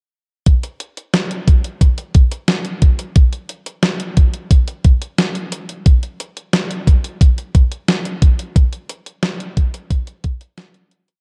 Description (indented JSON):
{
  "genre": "pop",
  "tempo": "89 BPM",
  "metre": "4/4",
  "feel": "straight",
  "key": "none",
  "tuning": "none",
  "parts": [
    { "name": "clean 12-bit digital drum machine", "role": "drums", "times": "0.5-11.2 s", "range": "hi-hat, kick drum, snare drum", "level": "-15 LUFS", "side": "equal", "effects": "none" }
  ],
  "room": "light reverb",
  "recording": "dark, warm production",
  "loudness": "-16 LUFS",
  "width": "mono",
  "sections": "0.5-11.2 verse",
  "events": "fade-out 8.6-11.2",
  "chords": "none",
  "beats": "| 0.47 1.14 1.81 2.49 | 3.16 3.84 4.51 5.19 | 5.86 6.54 7.21 7.88 | 8.56 9.23 9.90 10.58"
}